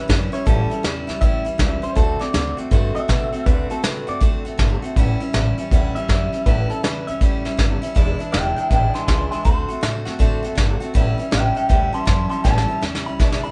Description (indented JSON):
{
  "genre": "rockabilly",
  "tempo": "160 BPM",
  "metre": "4/4",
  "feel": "swing 64% on 8ths",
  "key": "A mixolydian",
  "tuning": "A4 = 437 Hz",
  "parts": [
    { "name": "electric guitar through a small old amp", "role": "melody", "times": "0.0-13.5 s", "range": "A4 to C6", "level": "-27 LUFS", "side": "equal", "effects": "none" },
    { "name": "picked steel-string acoustic guitar", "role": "accompaniment", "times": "0.0-13.5 s", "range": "E2 to F#4", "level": "-28 LUFS", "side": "equal", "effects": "none" },
    { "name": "upright bass", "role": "bass", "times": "0.1-13.5 s", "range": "E1 to B2", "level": "-27 LUFS", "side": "equal", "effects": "none" },
    { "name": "vintage brush drum kit", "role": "drums", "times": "0.1-13.5 s", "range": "hi-hat, kick drum, snare drum", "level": "-22 LUFS", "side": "equal", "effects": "none" }
  ],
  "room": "light reverb",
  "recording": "band playing live in one room, nothing above 10.6 kHz",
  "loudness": "-20 LUFS",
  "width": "mono",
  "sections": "0.0-13.5 A section",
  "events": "drum fill 12.4-13.5",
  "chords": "0.0 A7; 2.0 D7; 5.0 A7; 8.0 E7; 9.5 D7; 10.9 A7"
}